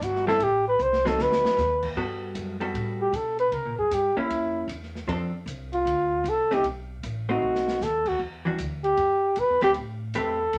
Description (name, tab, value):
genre	jazz, small-group swing and bop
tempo	154 BPM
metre	4/4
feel	swing 64% on 8ths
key	G major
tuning	A4 = 441 Hz
part	breathy flugelhorn	melody	0.0-10.6 s	E4 to C5	-25 LUFS	equal	none
part	upright bass	bass	0.0-10.6 s	G1 to C3	-37 LUFS	equal	none
part	open jazz drum kit	drums	0.0-10.6 s	crash cymbal, hi-hat, kick drum, ride cymbal, snare drum	-42 LUFS	equal	none
part	vintage hollow-body jazz guitar	accompaniment	0.3-10.4 s	E3 to B4	-32 LUFS	equal	none
room	moderate studio reverb, RT60 0.6 s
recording	none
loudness	-26 LUFS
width	mono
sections	0.0-2.0 A section; 2.0-10.6 B section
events	flugelhorn solo 0.0-2.0; drum fill 0.8-1.6, 7.4-7.8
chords	0.4 Am; 1.2 D7b9; 2.0 Gmaj9; 3.5 C7b9 (rootless); 5.1 F6; 6.6 B7b9; 8.2 Em9; 9.8 Am9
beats	0.02 | 0.41 0.79 1.18 1.57 | 1.96 2.35 2.74 3.13 | 3.52 3.91 4.30 4.69 | 5.08 5.47 5.86 6.25 | 6.64 7.03 7.42 7.81 | 8.20 8.59 8.98 9.37 | 9.76 10.15 10.54